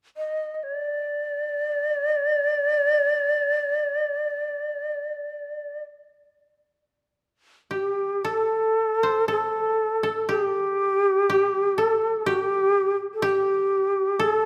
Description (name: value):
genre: japanese traditional, Japanese chamber music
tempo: free time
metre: none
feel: none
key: unclear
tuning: A4 = 440 Hz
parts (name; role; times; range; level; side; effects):
- breathy shakuhachi; melody; 0.2-14.5 s; G4 to Eb5; -24 LUFS; equal; none
- koto; second line; 7.7-14.5 s; G4 to C5; -31 LUFS; equal; none
room: moderate recital hall reverb, RT60 1.9 s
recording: none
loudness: -24 LUFS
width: mono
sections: 0.0-8.2 A section; 8.2-14.5 B section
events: none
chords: none